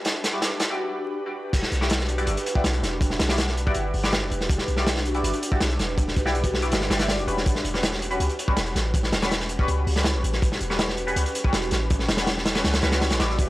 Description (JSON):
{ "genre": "drum and bass, jungle", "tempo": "162 BPM", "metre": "4/4", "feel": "straight", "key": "E dorian", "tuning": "A4 = 444 Hz", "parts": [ { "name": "ethereal airy pad", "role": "sustained chords", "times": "0.0-13.5 s", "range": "C#4 to B4", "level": "-31 LUFS", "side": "equal", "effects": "ensemble chorus, built-in reverb, phaser" }, { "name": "warm 808-style bass", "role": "bass", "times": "0.0-13.5 s", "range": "E1 to C#2", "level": "-27 LUFS", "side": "equal", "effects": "high-pass filter" }, { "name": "crunchy breakbeat drum kit", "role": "drums", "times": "0.0-13.5 s", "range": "crash cymbal, hi-hat, kick drum, snare drum", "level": "-24 LUFS", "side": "equal", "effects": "high-pass filter on kick, high-pass filter on hats, high-pass filter on cymbals, high-pass filter on snare, high-pass filter on room" }, { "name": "band-passed chord stab", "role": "stabs", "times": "0.3-13.5 s", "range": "G3 to D5", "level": "-30 LUFS", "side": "left 1 dB", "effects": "phaser, wide subtle chorus, dub echo" } ], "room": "light reverb, small room ambience", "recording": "dry, gritty hardware recording, transformer saturation, vinyl crackle", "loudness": "-21 LUFS", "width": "side -17 dB against mid", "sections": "0.0-1.5 A section; 1.5-13.5 B section", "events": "build-up 0.0-1.5; drum fill 0.0-0.8; break 0.8-1.5; drop 1.5-13.5", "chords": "0.0 Em9; 7.5 A13" }